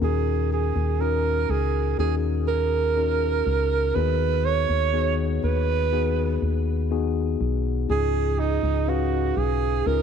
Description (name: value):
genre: pop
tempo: 61 BPM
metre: 4/4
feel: straight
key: unclear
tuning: A4 = 440 Hz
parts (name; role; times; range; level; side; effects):
- breathy alto saxophone; melody; 0.0-10.0 s; D#4 to C#5; -25 LUFS; right 10 dB; slapback echo
- mellow tine electric piano; accompaniment; 0.0-10.0 s; G#2 to E#5; -28 LUFS; left 15 dB; none
- organ-like FM bass; bass; 0.0-10.0 s; B1 to D#2; -24 LUFS; equal; none
room: light reverb, small room ambience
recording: 1960s-style stereo with parts hard left and right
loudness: -21 LUFS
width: side -7 dB against mid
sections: 0.0-10.0 A section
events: none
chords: 0.0 D#m7; 4.0 G#m7/D#; 7.9 C#add9